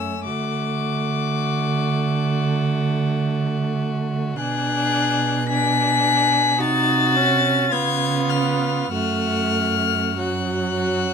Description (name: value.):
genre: classical, slow romantic movement for string quartet.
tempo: 47-60 BPM.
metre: 4/4.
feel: rubato.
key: unclear.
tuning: A4 = 440 Hz.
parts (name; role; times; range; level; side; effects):
warm violin; melody; 0.0-11.1 s; D6 to B6; -23 LUFS; left 5 dB; none.
rich violin; second line; 0.0-11.1 s; C#4 to G#4; -25 LUFS; left 4 dB; none.
dark viola; accompaniment; 0.0-11.1 s; F#3 to Eb4; -25 LUFS; right 2 dB; none.
dark cello; bass; 0.0-11.1 s; F#2 to D3; -24 LUFS; right 4 dB; none.
room: light reverb.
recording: minimal, uncompressed stereo recording.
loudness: -18 LUFS.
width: side -6 dB against mid.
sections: 0.0-11.1 A section.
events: none.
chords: 0.3 D; 4.4 G#m7b5/B; 6.6 Cdim7; 7.7 C#7; 8.9 F#m.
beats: | 0.25 1.32 2.34 3.38 | 4.39 5.51 6.60 7.72 | 8.93 10.19.